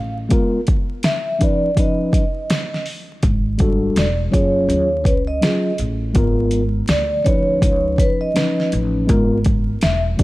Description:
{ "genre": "hip hop, jazz-hop", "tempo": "82 BPM", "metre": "4/4", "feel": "swing 62% on 16ths", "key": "G# dorian", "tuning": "A4 = 441 Hz", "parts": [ { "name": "vibraphone with soft mallets", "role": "melody", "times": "0.0-10.2 s", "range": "B4 to E#5", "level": "-21 LUFS", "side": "right 1 dB", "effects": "none" }, { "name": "upright bass", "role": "bass", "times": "0.0-10.2 s", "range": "E1 to D#2", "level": "-21 LUFS", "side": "equal", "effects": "none" }, { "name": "mellow tine electric piano", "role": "accompaniment", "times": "0.3-10.2 s", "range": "E3 to B4", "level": "-21 LUFS", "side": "left 1 dB", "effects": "none" }, { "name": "deep house drum kit", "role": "drums", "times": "0.3-10.2 s", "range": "hi-hat, kick drum, snare drum", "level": "-19 LUFS", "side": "equal", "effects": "none" } ], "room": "light reverb, digital ambience", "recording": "vinyl crackle", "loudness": "-15 LUFS", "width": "side -18 dB against mid", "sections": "0.0-10.2 A section", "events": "none", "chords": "0.3 G#m69; 1.0 C#9; 3.2 F#madd9/G#; 4.0 Esus2; 4.7 D#m11; 6.2 G#m69; 6.9 Dmmaj7; 7.6 C#9; 9.1 G#m69" }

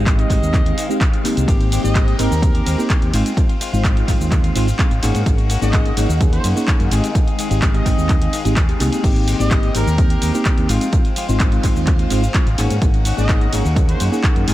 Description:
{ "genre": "filtered disco house", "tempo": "127 BPM", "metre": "4/4", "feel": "straight", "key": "Ab major", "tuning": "A4 = 442 Hz", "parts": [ { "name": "mellow reed electric piano", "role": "accompaniment", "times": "0.0-14.5 s", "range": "Ab3 to G5", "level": "-23 LUFS", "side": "equal", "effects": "phaser, vintage 12-bit sampler grit, sidechain pumping, tape echo" }, { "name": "phased string machine", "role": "sustained chords", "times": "0.0-14.5 s", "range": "Ab3 to G5", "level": "-29 LUFS", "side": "equal", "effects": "ensemble chorus, phaser, vintage 12-bit sampler grit, sidechain pumping" }, { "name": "clean electric guitar", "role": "riff", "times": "0.0-14.5 s", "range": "Eb3 to Ab4", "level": "-29 LUFS", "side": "left 6 dB", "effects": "vintage 12-bit sampler grit, sidechain pumping" }, { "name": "fingered electric bass", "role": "bass", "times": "0.0-14.5 s", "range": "Ab1 to Ab2", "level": "-19 LUFS", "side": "equal", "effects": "sidechain pumping" }, { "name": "electronic kick drum", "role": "drums", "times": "0.1-14.3 s", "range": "none", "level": "-16 LUFS", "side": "equal", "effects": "studio ambience" }, { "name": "punchy analog drum machine", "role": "drums", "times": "0.1-14.5 s", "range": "cabasa, crash cymbal, handclaps, hi-hat, ride cymbal", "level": "-26 LUFS", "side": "equal", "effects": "sidechain pumping on hats, studio ambience, sidechain pumping on perc, sidechain pumping on cymbals, tape echo" }, { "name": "clear trumpet section", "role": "melody", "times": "0.2-14.0 s", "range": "Bb4 to Eb5", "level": "-29 LUFS", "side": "left 1 dB", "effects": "vintage 12-bit sampler grit, sidechain pumping, tape echo" } ], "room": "digital ambience", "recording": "echo-heavy mix", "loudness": "-14 LUFS", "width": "side -15 dB against mid", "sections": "0.0-14.5 A section", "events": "none", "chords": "0.0 Fm7/Ab; 1.5 Abmaj7; 3.1 Ab6; 5.0 Gb6/Ab; 6.9 Fm7/Ab; 9.0 Abmaj7; 10.7 Ab6; 12.6 Gb6/Ab" }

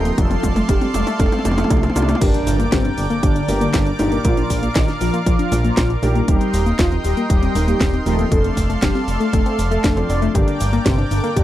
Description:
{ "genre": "italo disco", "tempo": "118 BPM", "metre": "4/4", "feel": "straight", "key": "G minor", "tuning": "A4 = 440 Hz", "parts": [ { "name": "mellow synth brass", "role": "melody", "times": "0.0-11.4 s", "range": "C3 to D5", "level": "-23 LUFS", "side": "equal", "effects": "chorus, tape echo" }, { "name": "lush unison pad", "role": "sustained chords", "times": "0.0-11.4 s", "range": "A4 to D6", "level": "-26 LUFS", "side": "equal", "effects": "chorus" }, { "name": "warbly dusty pluck", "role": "arpeggios", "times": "0.0-11.4 s", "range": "A3 to G4", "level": "-24 LUFS", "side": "left 3 dB", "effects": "chorus, cassette tape, tape echo" }, { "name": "dark baby grand piano", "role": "stabs", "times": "0.0-11.4 s", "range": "G2 to Bb4", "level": "-27 LUFS", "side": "right 1 dB", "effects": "none" }, { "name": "fat analog bass", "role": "bass", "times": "0.0-11.4 s", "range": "Eb1 to C2", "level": "-21 LUFS", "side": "equal", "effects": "none" }, { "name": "house drum kit", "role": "drums", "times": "0.1-11.4 s", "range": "cabasa, crash cymbal, handclaps, hi-hat, snare drum, toms", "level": "-24 LUFS", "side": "equal", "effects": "none" }, { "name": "electronic kick drum", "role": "drums", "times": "0.2-11.4 s", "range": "none", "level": "-19 LUFS", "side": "equal", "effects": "none" }, { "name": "impact", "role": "sound effects", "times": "2.4-4.2 s", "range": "none", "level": "-28 LUFS", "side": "equal", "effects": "none" } ], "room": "little or no reverb", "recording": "dry, close 1970s-style studio recording", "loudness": "-15 LUFS", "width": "side -13 dB against mid", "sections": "0.0-2.2 A section; 2.2-11.4 B section", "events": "drum fill 0.0-2.2; filter sweep on synth arpeggio sound 0.0-2.2; filter sweep on grand piano 0.0-2.2; impact 2.2-4.2", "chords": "0.2 F6; 2.2 Gm; 4.2 Bb; 6.3 Eb6; 8.3 F6; 10.3 Gm" }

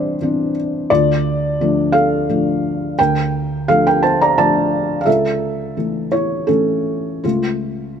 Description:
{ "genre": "neoclassical minimalist piano", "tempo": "86 BPM", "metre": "3/4", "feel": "rubato", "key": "D minor", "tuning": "A4 = 440 Hz", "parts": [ { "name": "felt-muted upright piano", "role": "solo", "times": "0.0-8.0 s", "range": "C2 to Bb5", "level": "-15 LUFS", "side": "equal", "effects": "none" } ], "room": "light reverb", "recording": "none", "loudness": "-15 LUFS", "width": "side -7 dB against mid", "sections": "0.0-8.0 A section", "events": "none", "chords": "0.0 Cadd9; 0.9 Dm; 5.1 A/C#" }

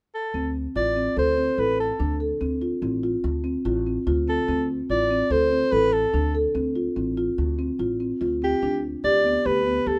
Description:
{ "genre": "contemporary instrumental, chamber music in an uneven meter", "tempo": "145 BPM", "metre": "5/4", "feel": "straight", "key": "D dorian", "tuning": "A4 = 442 Hz", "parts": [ { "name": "warm soprano saxophone", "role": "melody", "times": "0.1-10.0 s", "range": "G4 to D5", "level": "-26 LUFS", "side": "equal", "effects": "none" }, { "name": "marimba with soft mallets", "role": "arpeggios", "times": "0.3-10.0 s", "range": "B3 to A4", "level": "-26 LUFS", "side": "equal", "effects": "none" }, { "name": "upright bass", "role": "bass", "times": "0.3-10.0 s", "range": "A1 to D2", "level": "-32 LUFS", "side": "equal", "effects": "none" } ], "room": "little or no reverb", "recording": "none", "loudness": "-24 LUFS", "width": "mono", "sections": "0.3-10.0 A section", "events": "none", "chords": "0.3 Dm7; 8.6 G/D" }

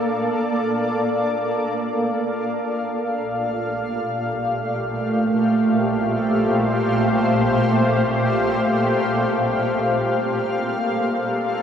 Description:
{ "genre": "ambient", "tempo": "free time", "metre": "none", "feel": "none", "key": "unclear", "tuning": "A4 = 441 Hz", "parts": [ { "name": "granular cloud pad", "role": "solo", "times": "0.0-11.6 s", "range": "Bb2 to F5", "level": "-19 LUFS", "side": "equal", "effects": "built-in reverb, tape echo" } ], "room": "wet huge ambient reverb, RT60 7.5 s", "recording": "none", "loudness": "-19 LUFS", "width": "side -8 dB against mid", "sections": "0.0-11.6 A section", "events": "none", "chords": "0.0 Bbmaj7; 2.4 Fadd9/Bb" }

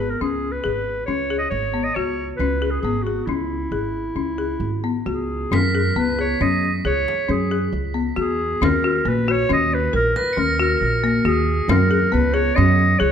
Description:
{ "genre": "contemporary instrumental, chamber music in an uneven meter", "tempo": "137 BPM", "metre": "7/4", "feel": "straight", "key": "unclear", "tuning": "A4 = 440 Hz", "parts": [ { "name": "warm clarinet", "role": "melody", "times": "0.0-13.1 s", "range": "E4 to D#5", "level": "-23 LUFS", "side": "right 1 dB", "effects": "none" }, { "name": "folk marimba with hard mallets", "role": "arpeggios", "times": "0.0-13.1 s", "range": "A#3 to A#4", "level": "-22 LUFS", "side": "left 6 dB", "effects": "none" }, { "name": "upright bass", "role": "bass", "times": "0.0-13.1 s", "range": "G#1 to F#2", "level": "-23 LUFS", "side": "right 3 dB", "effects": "none" }, { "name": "frame drum", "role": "percussion", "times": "5.5-12.9 s", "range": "none", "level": "-28 LUFS", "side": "left 1 dB", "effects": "none" }, { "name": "crotales", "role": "texture", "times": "5.5-11.3 s", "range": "A#6 to C#7", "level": "-30 LUFS", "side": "right 2 dB", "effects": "none" } ], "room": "moderate recital hall reverb, RT60 1.7 s", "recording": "none", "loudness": "-18 LUFS", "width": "side -8 dB against mid", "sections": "0.0-5.5 A section; 5.5-13.1 B section", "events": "none", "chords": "0.0 C#5; 5.5 F#9sus4; 8.6 D#m7; 11.7 F#sus2" }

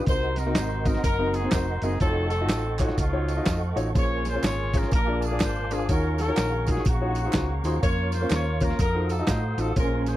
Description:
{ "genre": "uptempo gospel", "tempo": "124 BPM", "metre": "4/4", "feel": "swing 62% on 8ths", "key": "Bb minor", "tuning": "A4 = 440 Hz", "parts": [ { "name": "mellow tonewheel organ", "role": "sustained chords", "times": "0.0-10.2 s", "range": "Db4 to Eb6", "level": "-34 LUFS", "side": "right 4 dB", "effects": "fast rotary speaker, chorus vibrato" }, { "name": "mellow horn section", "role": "melody", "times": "0.1-10.2 s", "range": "A3 to Db5", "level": "-30 LUFS", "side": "left 2 dB", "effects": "none" }, { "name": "warm grand piano", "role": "accompaniment", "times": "0.1-10.2 s", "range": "Bb2 to Eb5", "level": "-29 LUFS", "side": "left 1 dB", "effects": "none" }, { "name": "hollow-body short-scale fingered electric bass", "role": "bass", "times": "0.1-10.2 s", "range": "F1 to A2", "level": "-28 LUFS", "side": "equal", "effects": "none" }, { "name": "dusty soul sampler-style drum kit", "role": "drums", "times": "0.1-10.2 s", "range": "hi-hat, kick drum, snare drum", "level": "-25 LUFS", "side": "equal", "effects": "none" }, { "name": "tambourine and handclaps", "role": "percussion", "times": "0.1-10.2 s", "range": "none", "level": "-41 LUFS", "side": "right 10 dB", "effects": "none" } ], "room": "little or no reverb", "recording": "dry, close 1970s-style studio recording", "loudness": "-22 LUFS", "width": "side -14 dB against mid", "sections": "0.0-10.2 A section", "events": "none", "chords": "0.1 Cm7b5; 2.0 F7b9b13; 4.0 Bbm9; 4.9 Bb7; 5.9 Ebm11; 7.8 Bbm/F; 8.8 F7b9" }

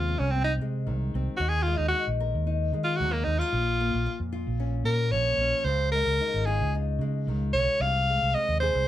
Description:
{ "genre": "highlife guitar band", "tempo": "112 BPM", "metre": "4/4", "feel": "straight", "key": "Bb minor", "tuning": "A4 = 440 Hz", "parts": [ { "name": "edgy alto saxophone", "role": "melody", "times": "0.0-8.9 s", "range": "Bb3 to F5", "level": "-26 LUFS", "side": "equal", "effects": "none" }, { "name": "nylon-string guitar", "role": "accompaniment", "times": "0.0-8.9 s", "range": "Bb2 to Bb4", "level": "-34 LUFS", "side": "left 5 dB", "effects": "none" }, { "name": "fingered electric bass", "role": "bass", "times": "0.0-8.9 s", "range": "Ab1 to Eb3", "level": "-28 LUFS", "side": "equal", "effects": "none" } ], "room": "moderate small room reverb, RT60 0.5 s", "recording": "band playing live in one room", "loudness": "-24 LUFS", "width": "side -13 dB against mid", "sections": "0.0-8.9 A section", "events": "alto saxophone solo 0.0-8.9", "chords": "0.0 Ab/C; 1.4 Ebm; 3.5 Bbm; 5.7 Dbadd9; 7.8 Ab/C" }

